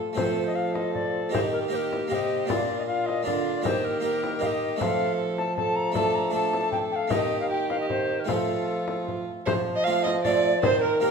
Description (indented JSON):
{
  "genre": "classical, renaissance-style consort dance",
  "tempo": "155 BPM",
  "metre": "3/4",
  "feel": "straight",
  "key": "F mixolydian",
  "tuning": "A4 = 440 Hz",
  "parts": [
    { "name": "harpsichord", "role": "accompaniment", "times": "0.0-11.1 s", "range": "Bb2 to C5", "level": "-30 LUFS", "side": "right 1 dB", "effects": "none" },
    { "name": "mellow tenor recorder", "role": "melody", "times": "0.2-11.1 s", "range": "A4 to Bb5", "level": "-29 LUFS", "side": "left 5 dB", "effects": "none" },
    { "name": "rich violin", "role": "second line", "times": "0.2-11.1 s", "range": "F4 to F5", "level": "-29 LUFS", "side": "right 5 dB", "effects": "none" },
    { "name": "warm bassoon", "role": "bass", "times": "0.2-11.1 s", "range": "Bb2 to F3", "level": "-31 LUFS", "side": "right 1 dB", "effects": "none" },
    { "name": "frame drum", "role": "percussion", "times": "0.2-10.8 s", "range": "none", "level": "-32 LUFS", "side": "left 3 dB", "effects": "none" }
  ],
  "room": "wet recital hall reverb, RT60 1.5 s",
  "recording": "minimal, uncompressed stereo recording",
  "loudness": "-23 LUFS",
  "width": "side -5 dB against mid",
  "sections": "0.2-9.5 A section; 9.5-11.1 A section",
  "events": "none",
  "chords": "0.2 F; 1.3 Eb; 2.5 Bb; 3.6 Eb; 4.8 F; 6.0 Dm/F; 7.1 Eb; 8.3 F",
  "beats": "| 0.17 0.56 0.94 | 1.33 1.72 2.10 | 2.49 2.88 3.26 | 3.65 4.04 4.42 | 4.80 5.19 5.57 | 5.96 6.34 6.73 | 7.12 7.50 7.89 | 8.28 8.68 9.07 | 9.46 9.85 10.24 | 10.62 11.01"
}